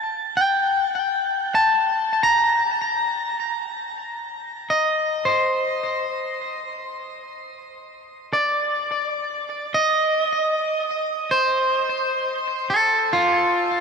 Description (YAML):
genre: ambient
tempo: free time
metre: none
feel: none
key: unclear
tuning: A4 = 441 Hz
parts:
  - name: electric guitar at the edge of break-up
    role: solo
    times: 0.4-13.8 s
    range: F4 to Bb5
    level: -20 LUFS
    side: equal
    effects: ping-pong delay
room: wet shimmer reverb, RT60 7.7 s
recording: dark, warm production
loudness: -19 LUFS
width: side -5 dB against mid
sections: 0.0-5.1 A section; 5.1-13.8 B section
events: none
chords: 0.0 N.C.; 0.5 Eb; 5.1 Cmadd9; 9.7 F7